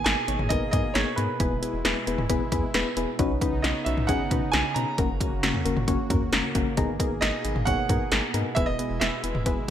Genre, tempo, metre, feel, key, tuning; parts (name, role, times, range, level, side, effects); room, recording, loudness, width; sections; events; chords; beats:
synth-pop; 134 BPM; 4/4; straight; G# minor; A4 = 439 Hz
clear baby grand piano; melody; 0.0-9.7 s; B4 to A#5; -30 LUFS; right 4 dB; ping-pong delay
warm analog pad; sustained chords; 0.0-9.7 s; B2 to G#4; -33 LUFS; right 1 dB; chorus
round analog bass; bass; 0.0-9.6 s; E1 to B2; -31 LUFS; equal
soft electric-piano-like synth keys; accompaniment; 0.1-9.6 s; A#3 to C#5; -29 LUFS; left 4 dB; chorus
punchy analog drum machine; drums; 0.1-9.6 s; hi-hat, kick drum, snare drum, toms; -26 LUFS; equal; gated reverb
moderate plate reverb, RT60 1.5 s; bright 1980s-style digital production; -23 LUFS; side -10 dB against mid
0.0-9.7 A section
synth keys fill 9.5
0.0 G#madd9; 1.4 E; 3.2 Badd9; 5.0 F#; 6.8 G#madd9; 8.6 E
0.06 0.51 0.95 | 1.40 1.85 2.30 2.74 | 3.19 3.64 4.09 4.54 | 4.98 5.43 5.88 6.33 | 6.77 7.22 7.67 8.12 | 8.56 9.01 9.46